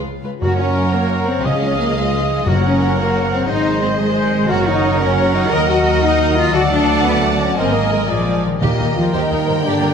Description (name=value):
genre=cinematic, heroic adventure film score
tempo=118 BPM (dotted quarters)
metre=6/8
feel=straight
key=Gb lydian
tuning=A4 = 439 Hz
part: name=dark symphonic violin section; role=melody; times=0.0-9.9 s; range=Bb4 to A5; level=-28 LUFS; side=left 5 dB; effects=none
part: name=warm symphonic violin section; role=second line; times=0.0-9.9 s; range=F4 to G5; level=-26 LUFS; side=left 3 dB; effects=none
part: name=warm symphonic viola section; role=accompaniment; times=0.0-9.9 s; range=Ab3 to D5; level=-27 LUFS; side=right 2 dB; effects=none
part: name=concert harp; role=arpeggios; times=0.0-9.9 s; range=Gb2 to D6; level=-25 LUFS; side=left 9 dB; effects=none
part: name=warm symphonic double bass section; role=bass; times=0.0-9.9 s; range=Gb1 to G2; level=-22 LUFS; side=right 4 dB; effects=none
part: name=rich symphonic cello section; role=bass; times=0.2-9.9 s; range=Db2 to Bb4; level=-22 LUFS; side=right 1 dB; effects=none
part: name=mellow hollow large flute ensemble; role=second line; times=0.4-9.9 s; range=Bb4 to Gb5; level=-28 LUFS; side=equal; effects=none
part: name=warm oboe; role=second line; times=0.4-8.4 s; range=Ab4 to Eb5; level=-26 LUFS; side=right 4 dB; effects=none
part: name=dark trombone section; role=sustained chords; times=0.4-9.9 s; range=Eb3 to Bb3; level=-26 LUFS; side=right 3 dB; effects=none
part: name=warm French horn section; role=sustained chords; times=0.4-9.9 s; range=F3 to Bb4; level=-21 LUFS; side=left 2 dB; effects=none
part: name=warm trumpet section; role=stabs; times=0.4-9.9 s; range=G4 to Eb5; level=-24 LUFS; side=right 1 dB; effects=none
part: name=timpani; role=percussion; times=0.4-2.9, 8.6-9.1 s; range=Gb2 to Eb3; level=-22 LUFS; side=left 1 dB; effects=none
room=moderate scoring stage reverb, RT60 1.6 s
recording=none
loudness=-14 LUFS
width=side -7 dB against mid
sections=0.4-8.6 A section; 8.6-9.9 B section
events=none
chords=0.4 Gb; 1.5 Dbadd9; 2.5 Gb; 3.5 Ab; 4.5 Gb; 5.5 Ebm; 6.5 D; 7.6 Abadd9; 8.1 Bb7; 8.6 Eb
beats=| 0.43 0.94 | 1.45 1.96 | 2.47 2.98 | 3.48 3.99 | 4.50 5.00 | 5.51 6.03 | 6.54 7.05 | 7.57 8.09 | 8.62 9.13 | 9.64